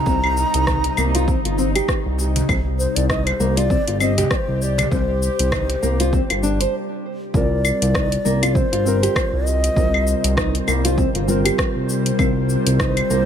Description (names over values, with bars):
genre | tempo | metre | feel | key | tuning
organic downtempo | 99 BPM | 4/4 | swing 57% on 16ths | C minor | A4 = 441 Hz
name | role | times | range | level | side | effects
breathy bass bansuri | melody | 0.0-13.3 s | C5 to Bb5 | -24 LUFS | equal | tape echo
bowed-like drone | sustained chords | 0.0-13.3 s | C3 to C5 | -28 LUFS | left 1 dB | built-in reverb, sidechain pumping
nylon-string guitar | arpeggios | 0.1-13.3 s | Bb3 to C5 | -25 LUFS | equal | low-pass filter, tape echo
smooth synth bass | bass | 0.1-13.3 s | G1 to C2 | -21 LUFS | equal | none
deep house drum kit | drums | 0.1-13.2 s | claves, hi-hat, rim click, shaker | -24 LUFS | left 2 dB | none
electronic kick drum | drums | 0.1-12.9 s | none | -23 LUFS | equal | none
cajon | percussion | 0.1-5.8 s | none | -29 LUFS | right 2 dB | none
muted felt-like synth keys | accompaniment | 7.3-13.3 s | G3 to Bb4 | -24 LUFS | right 1 dB | chorus, sidechain pumping, tape echo
room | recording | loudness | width
light reverb | none | -16 LUFS | side -8 dB against mid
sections
0.0-7.3 A section; 7.3-13.3 B section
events
stop 6.7-7.3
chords
0.0 Cm7; 7.3 C7(no3)